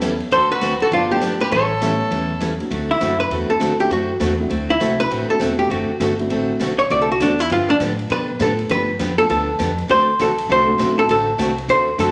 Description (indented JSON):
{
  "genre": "country, western swing",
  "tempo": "200 BPM",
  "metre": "4/4",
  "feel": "swing 63% on 8ths",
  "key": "D mixolydian",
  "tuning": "A4 = 440 Hz",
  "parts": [
    { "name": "dark upright piano", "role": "accompaniment", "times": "0.0-12.1 s", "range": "F#3 to A4", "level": "-28 LUFS", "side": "equal", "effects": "none" },
    { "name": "picked steel-string acoustic guitar", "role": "accompaniment", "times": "0.0-12.1 s", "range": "D3 to A4", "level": "-26 LUFS", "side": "equal", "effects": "none" },
    { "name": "upright bass", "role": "bass", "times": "0.0-12.1 s", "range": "E1 to B2", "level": "-30 LUFS", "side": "equal", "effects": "none" },
    { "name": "swinging big-band drum kit", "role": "drums", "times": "0.0-12.1 s", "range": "hi-hat, ride cymbal, snare drum", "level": "-34 LUFS", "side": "equal", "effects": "none" },
    { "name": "archtop guitar, miked and amplified", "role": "melody", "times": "0.3-12.1 s", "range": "D4 to D5", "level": "-20 LUFS", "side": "equal", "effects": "none" },
    { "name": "clear fiddle", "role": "second line", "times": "0.3-2.4 s", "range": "D4 to A4", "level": "-27 LUFS", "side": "equal", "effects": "none" }
  ],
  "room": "wet large studio reverb, RT60 1.1 s",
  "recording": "none",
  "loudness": "-18 LUFS",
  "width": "mono",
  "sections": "0.0-2.7 A section; 2.7-12.1 B section",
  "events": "hollow-body jazz guitar solo 2.7-12.1",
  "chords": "0.3 D7; 0.9 G9; 1.5 A9; 2.7 D9; 7.5 G9; 9.9 D9"
}